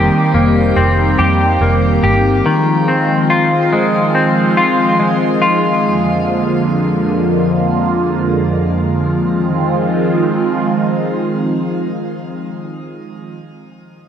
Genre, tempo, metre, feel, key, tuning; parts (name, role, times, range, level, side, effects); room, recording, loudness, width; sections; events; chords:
dream pop; 71 BPM; 4/4; straight; F dorian; A4 = 440 Hz
phased analog pad; sustained chords; 0.0-13.4 s; F2 to G4; -15 LUFS; right 1 dB; phaser, chorus
semi-hollow electric guitar; arpeggios; 0.0-6.4 s; Eb3 to G4; -15 LUFS; left 2 dB; lush chorus, tape echo
vintage muted picked electric bass; bass; 0.0-2.4 s; F1 to F2; -15 LUFS; equal
moderate shimmer reverb, RT60 4.2 s; -12 LUFS; side -8 dB against mid
0.0-9.2 A section; 9.2-12.6 B section
0.0 Cm7/F; 2.5 Fm7; 5.8 Bb7/F; 9.2 Fm7